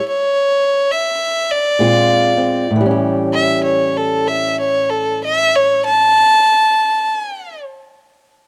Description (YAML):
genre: acoustic country blues, solo or duo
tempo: 63-75 BPM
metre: 4/4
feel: swing 64% on 8ths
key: A mixolydian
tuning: A4 = 439 Hz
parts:
  - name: clear fiddle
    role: melody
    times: 0.0-7.6 s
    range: A4 to A5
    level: -16 LUFS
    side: equal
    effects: none
  - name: fingerpicked old ladder-braced acoustic guitar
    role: accompaniment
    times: 1.8-6.4 s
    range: A2 to G4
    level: -20 LUFS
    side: equal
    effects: none
room: little or no reverb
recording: dry, close 1970s-style studio recording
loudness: -15 LUFS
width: mono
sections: 0.0-2.7 A section; 2.7-6.5 B section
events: slowing down 0.0-2.7; stop 0.0-1.8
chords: 0.0 A (rootless); 1.8 Bb9; 2.7 A7